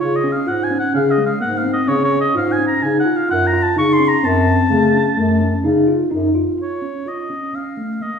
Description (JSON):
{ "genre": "contemporary instrumental, chamber music in an uneven meter", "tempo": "128 BPM", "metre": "7/4", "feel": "straight", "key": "Bb harmonic minor", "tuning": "A4 = 440 Hz", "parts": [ { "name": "warm oboe", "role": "melody", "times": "0.0-8.2 s", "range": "Db5 to Db6", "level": "-20 LUFS", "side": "equal", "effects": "none" }, { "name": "mellow tine electric piano", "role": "arpeggios", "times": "0.0-8.2 s", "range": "Ab3 to F4", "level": "-18 LUFS", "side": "equal", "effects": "fast stereo tremolo" }, { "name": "dark bass clarinet", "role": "bass", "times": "0.0-6.3 s", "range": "Gb2 to Db3", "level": "-19 LUFS", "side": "left 3 dB", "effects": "none" } ], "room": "wet recital hall reverb, RT60 1.4 s", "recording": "heard from further back in the room, studio reverb", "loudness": "-14 LUFS", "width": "side -6 dB against mid", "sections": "0.0-6.6 A section; 6.6-8.2 B section", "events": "none", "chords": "0.0 Db; 3.3 Gbm; 6.6 Bbm (rootless)" }